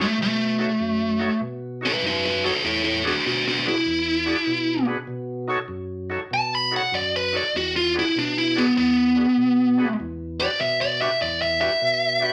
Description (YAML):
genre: blues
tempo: 98 BPM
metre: 4/4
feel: swing 68% on 8ths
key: unclear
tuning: A4 = 440 Hz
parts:
  - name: biting lead guitar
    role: melody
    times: 0.0-12.3 s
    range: A3 to B5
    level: -22 LUFS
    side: equal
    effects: overdrive
  - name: overdriven tonewheel organ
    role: accompaniment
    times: 0.0-12.3 s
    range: E2 to D5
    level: -32 LUFS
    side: equal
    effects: slow rotary speaker
room: wet studio reverb, RT60 0.6 s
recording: faint mains hum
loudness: -22 LUFS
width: mono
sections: 0.0-12.3 A section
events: lead electric guitar solo 0.0-12.3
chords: 0.0 B7; 2.6 E7; 5.1 B7; 7.5 E7; 10.0 Em7